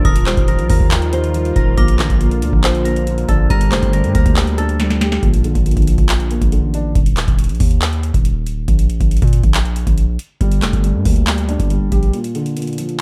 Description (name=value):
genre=hip hop, trap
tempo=139 BPM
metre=4/4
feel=half-time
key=Bb major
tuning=A4 = 441 Hz
part: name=concert harp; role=melody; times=0.0-6.8 s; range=A4 to C5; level=-26 LUFS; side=equal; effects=none
part: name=metallic FM bell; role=second line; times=0.0-3.9 s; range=Bb5 to Eb6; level=-32 LUFS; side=equal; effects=chorus, tremolo, tape echo
part: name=dark concert grand piano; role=accompaniment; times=0.0-7.0, 10.4-13.0 s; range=Bb2 to G4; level=-24 LUFS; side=equal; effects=none
part: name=sweeping resonant pad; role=sustained chords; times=0.0-5.2 s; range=Bb2 to Bb4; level=-29 LUFS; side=equal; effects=chorus
part: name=distorted 808-style bass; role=bass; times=0.0-12.1 s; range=D1 to Bb2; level=-21 LUFS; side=equal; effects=distortion
part: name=booming analog drum machine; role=drums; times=0.0-13.0 s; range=handclaps, hi-hat, kick drum, snare drum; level=-18 LUFS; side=equal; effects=none
room=little or no reverb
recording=dark, warm production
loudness=-16 LUFS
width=mono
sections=0.0-5.2 A section; 5.2-13.0 B section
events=drum fill 4.8-5.2; break 12.1-13.0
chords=0.0 Ebadd9; 1.8 Bb; 3.5 Gmadd9; 5.2 Bb; 7.0 Eb5; 8.7 N.C.; 10.4 Gmadd9; 12.1 Bb